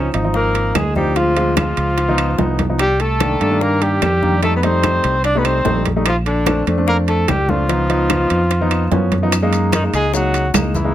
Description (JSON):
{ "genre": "Afro-Cuban jazz", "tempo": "147 BPM", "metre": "4/4", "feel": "straight", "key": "unclear", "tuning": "A4 = 439 Hz", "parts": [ { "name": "warm trumpet", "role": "melody", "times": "0.0-10.9 s", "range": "Db4 to D5", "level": "-20 LUFS", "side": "right 1 dB", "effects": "none" }, { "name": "clear tenor saxophone", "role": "second line", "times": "0.0-10.9 s", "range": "Db3 to D4", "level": "-24 LUFS", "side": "left 3 dB", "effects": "none" }, { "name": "warm concert grand piano", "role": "accompaniment", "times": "0.0-10.9 s", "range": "Eb3 to F4", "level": "-21 LUFS", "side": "left 1 dB", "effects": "none" }, { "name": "fingered electric bass", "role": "bass", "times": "0.0-10.9 s", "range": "Ab1 to G2", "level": "-19 LUFS", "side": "equal", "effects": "none" }, { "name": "congas", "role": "percussion", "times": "0.1-10.9 s", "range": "none", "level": "-26 LUFS", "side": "equal", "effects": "none" }, { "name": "timbales", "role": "percussion", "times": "0.1-10.7 s", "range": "none", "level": "-23 LUFS", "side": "right 8 dB", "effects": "none" }, { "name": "bongos", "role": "percussion", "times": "0.3-10.9 s", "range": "none", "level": "-26 LUFS", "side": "left 9 dB", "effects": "none" }, { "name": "claves", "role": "percussion", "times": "0.8-10.7 s", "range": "none", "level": "-32 LUFS", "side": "left 4 dB", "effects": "none" }, { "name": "maracas", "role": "percussion", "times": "9.3-10.9 s", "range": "none", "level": "-28 LUFS", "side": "left 8 dB", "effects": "none" } ], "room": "light reverb", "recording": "close, detailed microphones", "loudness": "-14 LUFS", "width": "side -12 dB against mid", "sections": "0.0-9.3 A section; 9.3-10.9 B section", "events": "none", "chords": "0.0 Dbmaj9 (rootless); 1.2 Dm7b5; 2.0 Db9; 2.8 Cm9; 4.4 F9; 6.1 Bbmaj9; 7.7 Db7; 9.3 F#6" }